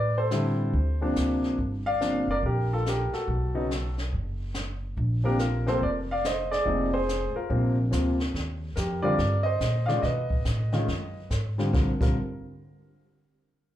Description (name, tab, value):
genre	jazz piano trio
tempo	142 BPM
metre	4/4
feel	swing 64% on 8ths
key	unclear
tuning	A4 = 443 Hz
part	warm grand piano	melody	0.0-12.2 s	C3 to F5	-26 LUFS	equal	plate reverb, slapback echo
part	upright bass	bass	0.0-12.1 s	F1 to B2	-28 LUFS	equal	none
part	jazz brush drum kit	drums	0.3-12.1 s	brushed snare drum, crash cymbal, hi-hat, kick drum, snare drum	-33 LUFS	equal	none
room	moderate club reverb, RT60 0.7 s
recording	live gig heard through the venue's PA, club reverb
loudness	-24 LUFS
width	side -12 dB against mid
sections	0.0-8.3 A section; 8.3-11.7 B section; 11.7-13.4 C section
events	none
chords	0.0 Am11; 0.7 Bbadd9/D; 1.6 Gm7; 3.3 B7(no3); 5.0 Bbadd9; 6.7 Fm7; 7.5 Bb; 8.3 Ebmaj7; 10.0 B7; 11.7 N.C.